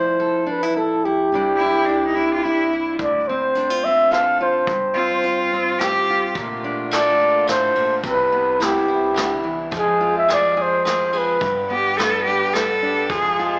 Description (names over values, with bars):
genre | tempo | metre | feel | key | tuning
acoustic folk-pop ballad | 107 BPM | 3/4 | straight | C major | A4 = 440 Hz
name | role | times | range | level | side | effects
breathy flugelhorn | melody | 0.0-11.7 s | G4 to F5 | -21 LUFS | equal | slapback echo
fingerpicked steel-string acoustic guitar | accompaniment | 0.0-13.6 s | G2 to B4 | -27 LUFS | equal | slapback echo
upright bass | bass | 0.0-13.6 s | F1 to G2 | -45 LUFS | equal | none
rich cello | second line | 1.6-6.4, 11.7-13.5 s | D4 to A4 | -23 LUFS | equal | slapback echo, analog delay
vintage brush drum kit | drums | 3.0-13.2 s | hi-hat, kick drum, ride cymbal, rim click, snare drum | -30 LUFS | equal | none
pedal harmonium | sustained chords | 6.4-13.6 s | C3 to G5 | -32 LUFS | equal | none
room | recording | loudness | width
moderate club reverb, RT60 0.6 s | live gig heard through the venue's PA, club reverb, small speaker sound | -19 LUFS | mono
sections
0.0-6.4 A section; 6.4-13.6 B section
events
none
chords
0.0 Fmaj7; 1.3 Cadd9; 3.0 Dm7; 4.7 G7sus4; 6.4 Bbmaj7; 8.0 Cmaj7; 9.7 Fmadd9; 11.4 G